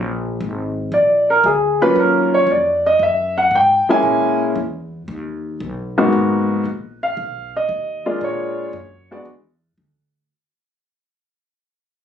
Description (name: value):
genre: jazz piano trio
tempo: 115 BPM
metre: 4/4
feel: swing 68% on 8ths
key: unclear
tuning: A4 = 440 Hz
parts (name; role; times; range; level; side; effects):
- upright bass; bass; 0.0-10.3 s; Ab1 to Bb2; -29 LUFS; left 1 dB; none
- warm upright piano; melody; 0.9-9.3 s; Ab2 to Ab5; -15 LUFS; equal; none
room: moderate studio reverb, RT60 0.5 s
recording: recorded on a phone in the room, studio ambience, compression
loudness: -15 LUFS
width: side -9 dB against mid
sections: 0.0-6.1 A section; 6.1-10.3 B section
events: fade-out 6.1-10.3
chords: 0.0 Bb7; 2.0 Ebm7; 4.1 Bbm7b5; 5.1 N.C.; 6.1 Abm7; 7.2 F7(b5, no3); 8.2 Bb7; 9.3 Dsus2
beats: 0.41 0.93 1.45 | 1.97 2.49 3.01 3.53 | 4.05 4.58 5.10 5.62 | 6.14 6.66 7.18 7.70 | 8.22 8.74 9.26 9.79